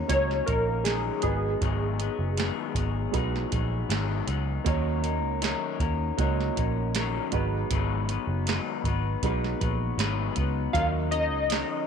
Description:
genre	indie pop, bedroom pop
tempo	79 BPM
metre	4/4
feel	straight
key	unclear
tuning	A4 = 436 Hz
part	electric guitar through a small old amp	accompaniment	0.0-11.9 s	Ab2 to Cb5	-31 LUFS	left 14 dB	wide subtle chorus, warbly pitch drift
part	warm upright piano	accompaniment	0.0-11.9 s	Gb3 to Db5	-34 LUFS	right 14 dB	none
part	warbly lo-fi synth keys	melody	0.1-3.5, 10.7-11.8 s	Ab4 to F5	-29 LUFS	left 1 dB	ensemble chorus, slapback echo
part	vintage muted picked electric bass	bass	0.1-11.6 s	Gb1 to Eb2	-29 LUFS	equal	none
part	soft vintage rhythm box	drums	0.1-11.7 s	hi-hat, kick drum, snare drum	-32 LUFS	right 3 dB	none
room	light reverb, digital ambience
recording	1960s-style stereo with parts hard left and right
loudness	-25 LUFS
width	side -7 dB against mid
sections	0.0-11.9 A section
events	none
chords	0.0 Ebm7; 1.2 Abm7; 4.7 Ebm7; 7.3 Abm7; 10.7 Ebm7

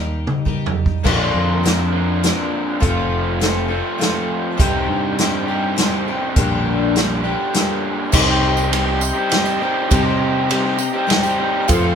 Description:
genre	folk rock and heartland rock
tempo	102 BPM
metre	3/4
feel	straight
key	C dorian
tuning	A4 = 440 Hz
part	picked twelve-string acoustic guitar	accompaniment	0.0-11.9 s	Bb2 to Bb4	-22 LUFS	left 4 dB	none
part	fingered electric bass	bass	0.0-11.9 s	F1 to C3	-22 LUFS	equal	none
part	vintage drum kit	drums	0.3-11.8 s	crash cymbal, hi-hat, kick drum, ride cymbal, snare drum, toms	-20 LUFS	right 1 dB	none
part	raw garage guitar	riff	1.0-11.9 s	F2 to G4	-20 LUFS	right 1 dB	overdrive
part	dark upright piano	accompaniment	8.1-11.9 s	Eb4 to C5	-28 LUFS	right 4 dB	none
part	bright tonewheel organ	sustained chords	8.1-11.9 s	G4 to C6	-29 LUFS	right 3 dB	overdrive, chorus vibrato, fast rotary speaker
part	tambourine	percussion	8.1-11.8 s	none	-29 LUFS	right 8 dB	none
room	light reverb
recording	band playing live in one room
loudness	-16 LUFS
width	side -7 dB against mid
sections	0.0-1.0 A section; 1.0-8.1 B section; 8.1-11.9 C section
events	drum fill 0.0-1.0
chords	0.0 Eb; 1.0 Bbadd9; 2.8 F; 4.6 Cm; 6.4 Gm/Bb; 8.1 Cm

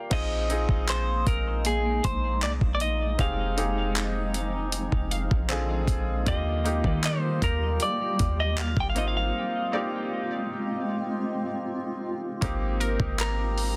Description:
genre	contemporary R&B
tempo	78 BPM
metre	4/4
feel	straight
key	unclear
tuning	A4 = 440 Hz
part	clear grand piano	accompaniment	0.0-13.8 s	D3 to G5	-35 LUFS	equal	none
part	clean electric guitar	melody	0.1-13.8 s	Ab4 to G5	-33 LUFS	equal	lush chorus, digital delay
part	granular cloud pad	sustained chords	1.0-13.8 s	F3 to G4	-36 LUFS	equal	built-in reverb
part	warm 808-style bass	bass	0.1-13.8 s	F1 to Eb3	-31 LUFS	equal	none
part	dusty soul sampler-style drum kit	drums	0.1-13.8 s	crash cymbal, handclaps, hi-hat, kick drum	-31 LUFS	equal	soft clipping on snare
part	glassy wavetable pluck	texture	0.1-13.8 s	Bb4 to F5	-41 LUFS	equal	none
room	little or no reverb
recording	dense, heavily limited modern master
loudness	-27 LUFS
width	mono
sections	0.1-12.4 A section; 12.4-13.8 B section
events	break 9.3-12.4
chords	0.1 Bb7sus4; 3.2 Fm7; 5.5 Bb7; 6.3 Ebmaj7; 9.0 Ab6; 12.4 Abmaj9

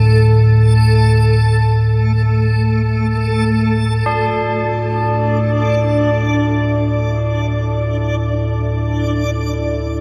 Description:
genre	dark ambient drone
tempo	free time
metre	none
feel	none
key	unclear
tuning	A4 = 440 Hz
part	deep rumbling drone	drone	0.0-10.0 s	D2 to A2	-17 LUFS	equal	built-in reverb
part	backwards swelling texture	texture	0.0-10.0 s	A3 to D5	-22 LUFS	equal	built-in reverb, shimmer reverb
part	sweeping resonant pad	sustained chords	4.1-10.0 s	E4 to D5	-32 LUFS	equal	chorus, shimmer reverb
part	tubular bells	arpeggios	4.1-10.0 s	D4	-24 LUFS	equal	delay, shimmer reverb
room	wet huge ambient reverb, RT60 8.6 s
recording	none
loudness	-15 LUFS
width	mono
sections	0.0-4.1 A section; 4.1-10.0 B section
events	filter sweep on synth drone 4.1-10.0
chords	0.0 D5; 4.1 Dsus2

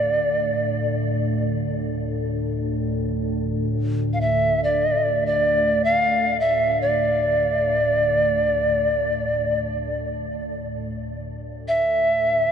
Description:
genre	world meditative, free-time meditation music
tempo	free time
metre	none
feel	none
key	D hirajoshi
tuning	A4 = 443 Hz
part	bright polished pan flute	melody	0.0-12.5 s	D5 to F5	-20 LUFS	equal	tape echo
part	glassy FM pad	drone	0.0-12.5 s	D2 to A2	-26 LUFS	equal	ensemble chorus, built-in reverb
room	wet huge ambient reverb, RT60 7.8 s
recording	dark, warm production, nothing above 10.6 kHz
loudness	-19 LUFS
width	side -7 dB against mid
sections	0.0-12.5 A section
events	none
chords	none

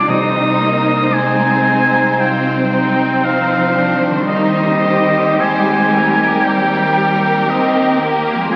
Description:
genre	classical, slow romantic movement for symphony orchestra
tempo	57 BPM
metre	4/4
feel	rubato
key	C minor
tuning	A4 = 440 Hz
part	warm symphonic violin section	melody	0.0-8.6 s	Ab4 to C5	-26 LUFS	equal	none
part	bright oboe	second line	0.0-8.6 s	Eb5 to Eb6	-19 LUFS	equal	none
part	warm studio violin section	second line	0.0-8.6 s	D4 to G4	-24 LUFS	equal	none
part	clear symphonic viola section	accompaniment	0.0-8.6 s	G3 to C4	-23 LUFS	equal	none
part	concert harp	arpeggios	0.0-8.6 s	F2 to C5	-28 LUFS	equal	none
part	rich symphonic cello section	bass	0.0-8.6 s	Eb3 to Eb4	-23 LUFS	equal	none
part	warm symphonic double bass section	bass	0.0-8.6 s	C2 to F2	-28 LUFS	equal	none
part	warm French horn section	sustained chords	0.1-8.6 s	C4 to F4	-24 LUFS	equal	none
part	timpani	percussion	0.1-1.6 s	C3	-28 LUFS	equal	none
room	wet scoring stage reverb, RT60 2.0 s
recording	very old 78 rpm record, vinyl crackle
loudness	-14 LUFS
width	mono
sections	0.0-8.6 A section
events	none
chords	0.1 Cm; 4.3 Cm/Eb

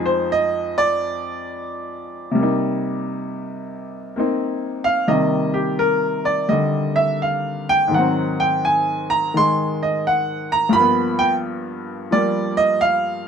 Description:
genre	solo jazz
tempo	87 BPM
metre	4/4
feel	swing 66% on 8ths, rubato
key	C minor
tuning	A4 = 439 Hz
part	bright upright piano	solo	0.0-13.3 s	F2 to C6	-18 LUFS	equal	none
room	light reverb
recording	none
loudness	-17 LUFS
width	side -7 dB against mid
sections	0.0-13.3 A section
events	upright piano solo 0.0-13.3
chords	0.0 Fm7; 2.4 Cm7; 7.9 Ab7; 10.7 G7#9

